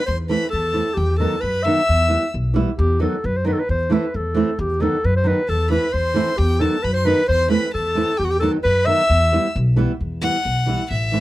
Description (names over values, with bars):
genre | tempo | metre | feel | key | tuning
balkan folk, Balkan wedding band | 133 BPM | 2/4 | swing 54% on 16ths | E harmonic minor | A4 = 440 Hz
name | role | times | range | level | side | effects
warm clarinet | melody | 0.0-9.5 s | F#4 to E5 | -20 LUFS | equal | none
bright violin | second line | 0.0-2.3, 5.5-11.2 s | E5 to E6 | -27 LUFS | left 2 dB | none
upright bass | bass | 0.1-11.2 s | A1 to F#2 | -21 LUFS | equal | none
flamenco guitar | accompaniment | 0.3-11.2 s | D#3 to E4 | -21 LUFS | right 2 dB | none
room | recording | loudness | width
small room ambience | dry, close 1970s-style studio recording | -17 LUFS | side -16 dB against mid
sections
0.0-2.8 A section; 2.8-10.0 A section; 10.0-11.2 B section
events
violin solo 10.0-11.2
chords
0.1 Am/E; 1.0 B/E; 1.9 Em; 2.8 B/E; 3.7 Am/E; 4.6 B/E; 5.5 Am/E; 6.4 B/E; 7.3 Am/E; 8.2 B/E; 9.1 Em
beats
| 0.08 0.53 | 0.98 1.43 | 1.88 2.33 | 2.78 3.23 | 3.68 4.13 | 4.58 5.03 | 5.49 5.94 | 6.39 6.84 | 7.29 7.74 | 8.19 8.64 | 9.10 9.55 | 10.00 10.45 | 10.90